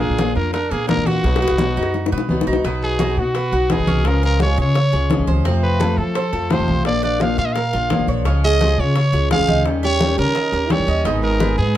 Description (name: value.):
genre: latin, Cuban son and guajira.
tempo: 171 BPM.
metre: 4/4.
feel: straight.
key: unclear.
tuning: A4 = 444 Hz.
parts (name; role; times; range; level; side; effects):
growling trumpet; melody; 0.0-11.8 s; F#4 to F5; -22 LUFS; right 1 dB; none.
nylon-string guitar; second line; 0.0-2.3, 8.4-11.8 s; Cb4 to Ab4; -26 LUFS; right 5 dB; none.
picked acoustic archtop guitar; accompaniment; 0.0-11.8 s; B2 to Ab4; -23 LUFS; left 4 dB; none.
Cuban tres; arpeggios; 0.0-11.8 s; Bb3 to Eb5; -26 LUFS; right 4 dB; none.
upright bass; bass; 0.0-11.8 s; Ab1 to F3; -20 LUFS; equal; none.
congas; percussion; 0.0-11.8 s; none; -24 LUFS; equal; none.
bongos; percussion; 0.2-11.6 s; none; -26 LUFS; left 6 dB; none.
room: light reverb.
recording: dark, warm production.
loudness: -16 LUFS.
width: side -12 dB against mid.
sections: 0.0-2.6 A section; 2.6-11.8 B section.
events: drum fill 1.2-2.6.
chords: 0.0 Bb; 1.2 B; 4.1 Db; 5.5 F; 6.9 Bb; 8.3 Db; 9.7 Eb7; 11.1 Abm.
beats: 0.18 0.54 0.89 | 1.24 1.59 1.94 2.29 | 2.65 3.00 3.35 3.70 | 4.05 4.40 4.75 5.11 | 5.46 5.81 6.16 6.51 | 6.86 7.21 7.56 7.91 | 8.26 8.61 8.96 9.31 | 9.66 10.01 10.36 10.71 | 11.06 11.41 11.76.